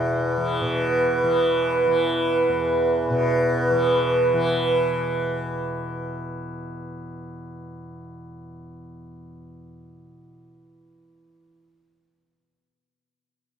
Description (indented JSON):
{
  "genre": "world meditative, free-time meditation music",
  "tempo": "free time",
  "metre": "none",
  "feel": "none",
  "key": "unclear",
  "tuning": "A4 = 441 Hz",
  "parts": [
    { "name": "tanpura", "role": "drone", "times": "0.0-11.5 s", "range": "E2 to E3", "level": "-25 LUFS", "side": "left 1 dB", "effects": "none" },
    { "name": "glass harmonica", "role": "texture", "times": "0.6-4.7 s", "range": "B4", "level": "-22 LUFS", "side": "right 2 dB", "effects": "none" }
  ],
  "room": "wet church reverb, RT60 2.6 s",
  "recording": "dark, warm production",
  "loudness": "-20 LUFS",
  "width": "side -8 dB against mid",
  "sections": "0.6-4.8 A section",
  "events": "none",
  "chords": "none"
}